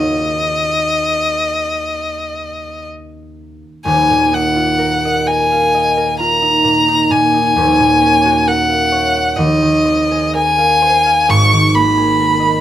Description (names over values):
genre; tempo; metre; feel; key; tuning
classical, impressionist duo for violin and harp; 56-68 BPM; 4/4; rubato; Eb dorian; A4 = 440 Hz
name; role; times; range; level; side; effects
warm violin; melody; 0.0-12.6 s; Eb5 to Db6; -13 LUFS; left 2 dB; none
concert harp; accompaniment; 0.0-12.6 s; Eb1 to Gb5; -16 LUFS; right 2 dB; none
room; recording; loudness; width
light reverb; minimal, uncompressed stereo recording; -11 LUFS; side -12 dB against mid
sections
0.0-3.9 A section; 3.9-12.6 B section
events
none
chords
0.0 Ebm9; 3.9 Ebmadd9; 7.6 Gbmaj9/Eb; 9.4 Ab69/Eb; 11.3 Abmadd9